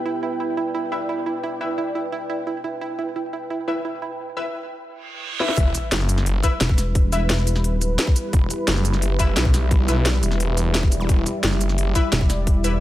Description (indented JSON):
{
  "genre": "dark technical drum and bass",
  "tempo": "174 BPM",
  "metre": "4/4",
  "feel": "straight",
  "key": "E minor",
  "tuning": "A4 = 442 Hz",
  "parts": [
    { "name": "dark analog pad", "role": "sustained chords", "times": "0.0-12.8 s", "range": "G3 to D5", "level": "-28 LUFS", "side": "right 1 dB", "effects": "chorus, sidechain pumping" },
    { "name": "airy breathy pad", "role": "texture", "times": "0.0-4.2 s", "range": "E4 to G5", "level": "-30 LUFS", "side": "right 1 dB", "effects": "chorus, sidechain pumping" },
    { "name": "analog pluck", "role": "arpeggios", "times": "0.1-4.1 s", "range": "E4", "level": "-27 LUFS", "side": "right 4 dB", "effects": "chorus, sidechain pumping, dub echo" },
    { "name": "orchestra-hit-like synth stab", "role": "stabs", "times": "0.9-12.7 s", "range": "E4 to E5", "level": "-29 LUFS", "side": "left 4 dB", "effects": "built-in reverb, dub echo" },
    { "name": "reverse cymbal, sub drop and zap", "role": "sound effects", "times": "5.0-7.0, 11.0-11.1 s", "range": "none", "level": "-30 LUFS", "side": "right 2 dB", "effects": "none" },
    { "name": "drum and bass drum kit", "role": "drums", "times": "5.4-12.7 s", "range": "hi-hat, shaker, snare drum", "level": "-24 LUFS", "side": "equal", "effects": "low-pass filter on snare, low-pass filter on hats, low-pass filter on perc" },
    { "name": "snarling distorted saw bass", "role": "bass", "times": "5.6-11.9 s", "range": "E1 to B1", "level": "-21 LUFS", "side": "equal", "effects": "distortion" },
    { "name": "electronic kick drum", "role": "drums", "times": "5.6-12.5 s", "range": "none", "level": "-18 LUFS", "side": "equal", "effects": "none" },
    { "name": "pulsing pluck wobble bass", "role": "bass", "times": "6.6-8.0, 12.1-12.8 s", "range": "E1", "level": "-21 LUFS", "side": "equal", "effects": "chorus" }
  ],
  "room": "light reverb, digital ambience",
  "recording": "none",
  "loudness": "-19 LUFS",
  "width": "side -14 dB against mid",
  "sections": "0.0-5.6 A section; 5.6-12.8 B section",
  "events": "reverse cymbal 5.0-5.6; drum fill 5.4; drop 5.6-12.8; impact 5.6-7.0",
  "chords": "0.0 Em"
}